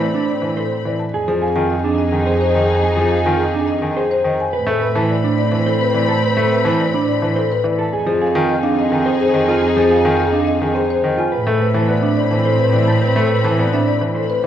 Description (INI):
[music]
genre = classical, minimalist pattern music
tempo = 106 BPM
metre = 3/4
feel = straight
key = unclear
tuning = A4 = 440 Hz
[part]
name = marimba with medium mallets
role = melody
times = 0.0-14.5 s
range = Ab4 to A5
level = -21 LUFS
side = left 6 dB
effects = none
[part]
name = mellow alto flute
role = second line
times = 0.0-14.5 s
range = Ab4 to C5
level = -24 LUFS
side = right 1 dB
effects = none
[part]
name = bright grand piano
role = accompaniment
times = 0.0-14.5 s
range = Eb3 to B3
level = -22 LUFS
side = equal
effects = none
[part]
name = warm symphonic string section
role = sustained chords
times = 0.0-14.5 s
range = C4 to B5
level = -24 LUFS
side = left 2 dB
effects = none
[part]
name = mellow electric guitar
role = arpeggios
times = 0.0-14.3 s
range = D4 to C5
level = -23 LUFS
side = right 6 dB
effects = none
[part]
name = clear symphonic double bass section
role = bass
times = 0.0-14.5 s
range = F2 to A2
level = -20 LUFS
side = right 2 dB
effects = none
[sound]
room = moderate scoring stage reverb, RT60 2.0 s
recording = worn, warbling old tape, cassette tape, warbly pitch drift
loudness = -14 LUFS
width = side -10 dB against mid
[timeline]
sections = 0.0-14.5 A section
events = none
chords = 0.0 Amadd9; 1.1 Fm7; 4.5 Amadd9; 7.9 Fm7; 11.3 Amadd9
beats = 0.00 0.57 | 1.14 1.70 2.27 | 2.83 3.40 3.96 | 4.53 5.10 5.66 | 6.23 6.79 7.36 | 7.93 8.49 9.06 | 9.62 10.19 10.76 | 11.32 11.89 12.46 | 13.02 13.59 14.15